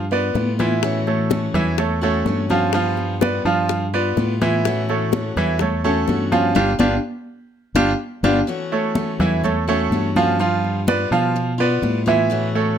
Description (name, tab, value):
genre	latin, Cuban son and guajira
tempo	125 BPM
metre	4/4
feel	straight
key	unclear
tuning	A4 = 439 Hz
part	bright grand piano	arpeggios	0.0-12.8 s	E3 to F5	-20 LUFS	right 3 dB	none
part	fingered electric bass	bass	0.0-12.8 s	G1 to B2	-23 LUFS	equal	none
part	picked steel-string acoustic guitar	accompaniment	0.1-12.8 s	E3 to F#4	-24 LUFS	left 4 dB	none
part	congas	percussion	0.1-12.8 s	none	-24 LUFS	left 1 dB	none
part	bongos	percussion	0.4-8.3 s	none	-26 LUFS	left 12 dB	none
room	light reverb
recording	close, detailed microphones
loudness	-17 LUFS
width	side -8 dB against mid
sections	0.0-8.5 A section; 8.5-12.8 A section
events	band accent 6.6-8.5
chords	0.0 G7; 0.8 A6; 2.7 G7; 4.6 A6; 6.6 G7; 8.5 A6; 10.4 G7